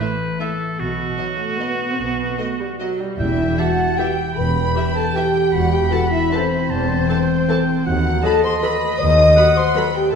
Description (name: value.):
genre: classical.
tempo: 154 BPM.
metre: 3/4.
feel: uneven beats, rubato.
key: E minor.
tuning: A4 = 439 Hz.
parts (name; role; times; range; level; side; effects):
rich studio violin section; melody; 0.0-9.8 s; D#5 to B5; -34 LUFS; left 1 dB; none.
bright oboe; second line; 0.0-10.2 s; F#4 to B5; -25 LUFS; right 1 dB; none.
warm studio violin section; second line; 0.0-10.2 s; B3 to D#6; -29 LUFS; left 1 dB; none.
rich studio viola section; accompaniment; 0.0-9.8 s; E3 to A4; -27 LUFS; right 2 dB; none.
concert harp; arpeggios; 0.0-10.2 s; A2 to E5; -25 LUFS; left 5 dB; none.
clear studio double bass section; bass; 0.8-9.3 s; E1 to D#2; -24 LUFS; right 2 dB; none.
rich symphonic cello section; bass; 0.8-10.2 s; D#2 to B2; -27 LUFS; right 2 dB; none.
mellow hollow silver concert flute; second line; 3.2-10.2 s; C5 to D#6; -26 LUFS; left 1 dB; none.
mellow French horn section; sustained chords; 3.2-10.2 s; C4 to D#5; -18 LUFS; left 1 dB; none.
timpani; percussion; 3.2-3.8 s; E2; -30 LUFS; right 1 dB; none.
room: wet scoring stage reverb, RT60 1.7 s.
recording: heard from further back in the room.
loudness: -16 LUFS.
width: side -6 dB against mid.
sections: 0.0-3.2 A section; 3.2-10.2 B section.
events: none.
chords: 0.0 A5; 0.8 B; 3.2 Em; 5.5 Am/E; 7.9 B7/D#.